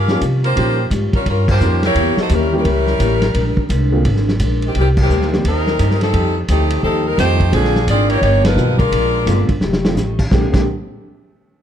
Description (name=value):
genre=jazz, big band swing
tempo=172 BPM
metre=4/4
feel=swing 63% on 8ths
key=unclear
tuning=A4 = 440 Hz
part: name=clear saxophone section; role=melody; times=0.0-9.4 s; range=Eb3 to F5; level=-18 LUFS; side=left 1 dB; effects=none
part: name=picked steel-string acoustic guitar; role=accompaniment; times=0.0-10.6 s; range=G2 to G4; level=-24 LUFS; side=left 3 dB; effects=none
part: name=upright bass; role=bass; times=0.0-10.7 s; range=F1 to C3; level=-17 LUFS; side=equal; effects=none
part: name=warm concert grand piano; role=accompaniment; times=0.1-10.6 s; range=D3 to G4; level=-22 LUFS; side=right 1 dB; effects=none
part: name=vintage drum kit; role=drums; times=0.1-10.6 s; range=crash cymbal, hi-hat, kick drum, ride cymbal, snare drum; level=-21 LUFS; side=equal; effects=none
room=light reverb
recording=dark, warm production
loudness=-13 LUFS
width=side -9 dB against mid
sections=0.0-10.3 A section; 10.3-11.6 B section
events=band accent 1.4, 4.9, 8.4; drum fill 9.6-10.0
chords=0.0 Eb9; 1.9 Edim7; 3.3 Bb9; 4.7 Cm7; 6.1 F9; 7.5 Bb9; 8.2 G7alt; 8.9 Bb9; 9.6 F9; 10.3 Bb13